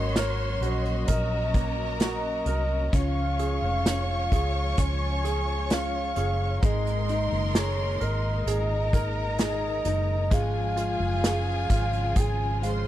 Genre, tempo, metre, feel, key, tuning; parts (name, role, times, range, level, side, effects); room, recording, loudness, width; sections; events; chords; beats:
pop ballad; 65 BPM; 4/4; straight; Db major; A4 = 440 Hz
mellow horn-like synth lead; melody; 0.0-12.9 s; Db5 to Ab5; -31 LUFS; equal; chorus, slapback echo
rich studio violin section; second line; 0.0-12.9 s; Ab4 to Db6; -34 LUFS; left 1 dB
clear baby grand piano; accompaniment; 0.0-12.9 s; Ab3 to Bb4; -34 LUFS; right 7 dB
warm studio string section; sustained chords; 0.0-12.9 s; Bb2 to Gb4; -37 LUFS; left 3 dB
picked steel-string acoustic guitar; arpeggios; 0.0-12.9 s; Ab2 to Db5; -38 LUFS; left 12 dB
vintage muted fingered electric bass; bass; 0.0-12.9 s; F1 to Db2; -28 LUFS; equal
unplugged drum kit; drums; 0.2-12.8 s; hi-hat, kick drum, snare drum; -25 LUFS; equal
little or no reverb; dry, close 1970s-style studio recording; -24 LUFS; side -13 dB against mid
0.0-12.9 A section
0.0 Gb; 2.9 Db; 6.6 Absus2; 10.3 Db
0.16 1.08 2.00 | 2.93 3.85 4.77 5.70 | 6.62 7.54 8.47 9.39 | 10.31 11.24 12.16